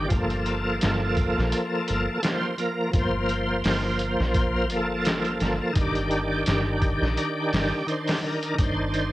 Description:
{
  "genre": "trip hop",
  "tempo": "85 BPM",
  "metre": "4/4",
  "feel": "swing 55% on 16ths",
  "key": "G minor",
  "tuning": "A4 = 440 Hz",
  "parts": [
    { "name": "bright tonewheel organ", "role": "accompaniment", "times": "0.0-9.1 s", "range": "Eb3 to C5", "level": "-25 LUFS", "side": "equal", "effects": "chorus vibrato, slow rotary speaker, tremolo, cassette tape, tape echo" },
    { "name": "deep dub fingered electric bass", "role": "bass", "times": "0.0-9.1 s", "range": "G1 to Bb1", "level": "-29 LUFS", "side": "equal", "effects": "tube saturation" },
    { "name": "trip hop sampler-style drum kit", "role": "drums", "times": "0.1-9.1 s", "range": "hi-hat, kick drum, snare drum", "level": "-27 LUFS", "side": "equal", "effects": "cassette tape" }
  ],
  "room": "light reverb",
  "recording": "home recording on cassette",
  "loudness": "-22 LUFS",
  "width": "side -16 dB against mid",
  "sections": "0.0-9.1 A section",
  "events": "none",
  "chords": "0.1 Gm9; 5.8 Ebmaj7/G",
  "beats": "| 0.12 0.82 1.53 2.24 | 2.94 3.65 4.36 5.06 | 5.77 6.47 7.18 7.88 | 8.59"
}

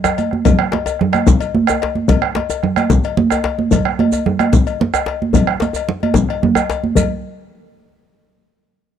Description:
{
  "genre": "west african traditional, West African drum ensemble",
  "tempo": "147 BPM (dotted quarters)",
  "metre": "12/8",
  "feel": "straight",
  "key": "none",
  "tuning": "none",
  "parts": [
    { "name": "bombo", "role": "percussion", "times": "0.0-7.1 s", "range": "none", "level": "-17 LUFS", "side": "left 1 dB", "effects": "none" },
    { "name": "congas", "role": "percussion", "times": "0.0-7.1 s", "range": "none", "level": "-17 LUFS", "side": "right 5 dB", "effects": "none" },
    { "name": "cowbell", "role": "percussion", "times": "0.0-7.1 s", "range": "none", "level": "-23 LUFS", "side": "left 12 dB", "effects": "none" },
    { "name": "djembe", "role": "percussion", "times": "0.0-7.1 s", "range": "none", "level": "-20 LUFS", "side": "left 2 dB", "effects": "none" },
    { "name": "shekere", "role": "percussion", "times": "0.0-7.1 s", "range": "none", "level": "-24 LUFS", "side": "right 6 dB", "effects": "none" }
  ],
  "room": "little or no reverb",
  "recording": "dry, close 1970s-style studio recording",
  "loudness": "-13 LUFS",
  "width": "side -9 dB against mid",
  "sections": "0.0-7.0 A section; 7.0-8.6 B section",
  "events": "drum fill 0.0-0.5",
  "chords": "none",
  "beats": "0.04 | 0.45 0.86 1.27 1.68 | 2.09 2.50 2.90 3.31 | 3.72 4.13 4.53 4.94 | 5.35 5.75 6.16 6.56 | 6.97"
}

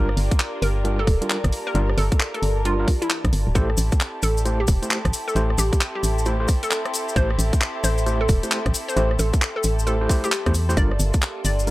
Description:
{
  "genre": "UK garage, two-step garage",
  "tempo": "133 BPM",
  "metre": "4/4",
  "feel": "swing 64% on 16ths",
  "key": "A phrygian",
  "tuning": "A4 = 439 Hz",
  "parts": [
    { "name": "hollow square pluck", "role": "melody", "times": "0.0-11.7 s", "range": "E4 to D5", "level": "-28 LUFS", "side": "equal", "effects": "chorus" },
    { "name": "muted studio violin section", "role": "sustained chords", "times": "0.0-11.7 s", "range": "Bb3 to Bb4", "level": "-34 LUFS", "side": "left 1 dB", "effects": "sidechain pumping" },
    { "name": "overdriven tine electric piano", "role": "stabs", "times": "0.0-11.7 s", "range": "G3 to C5", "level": "-28 LUFS", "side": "right 1 dB", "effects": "fast tremolo, analog delay" },
    { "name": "organ-like FM bass", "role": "bass", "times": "0.0-11.7 s", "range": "D1 to E2", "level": "-22 LUFS", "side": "equal", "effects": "none" },
    { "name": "warbly tape-like pad", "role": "texture", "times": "0.0-11.7 s", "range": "G4 to C6", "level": "-32 LUFS", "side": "equal", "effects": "chorus, built-in reverb, sidechain pumping" },
    { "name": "garage drum kit", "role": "drums", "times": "0.1-11.7 s", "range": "handclaps, hi-hat, rim click", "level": "-27 LUFS", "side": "equal", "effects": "none" },
    { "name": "electronic kick drum", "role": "drums", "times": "0.3-11.2 s", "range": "none", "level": "-20 LUFS", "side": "equal", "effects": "none" },
    { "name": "cabasa", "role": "percussion", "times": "3.6-11.7 s", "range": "none", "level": "-30 LUFS", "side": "left 3 dB", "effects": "none" }
  ],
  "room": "little or no reverb",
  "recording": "dry, gritty hardware recording",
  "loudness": "-19 LUFS",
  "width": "side -18 dB against mid",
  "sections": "0.0-11.7 A section",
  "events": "none",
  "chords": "0.0 Gm7; 3.6 Am7; 10.8 Gm7",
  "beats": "0.40 0.85 1.30 | 1.75 2.20 2.65 3.10 | 3.55 4.00 4.46 4.91 | 5.36 5.81 6.26 6.71 | 7.16 7.61 8.06 8.52 | 8.97 9.42 9.87 10.32 | 10.77 11.22 11.67"
}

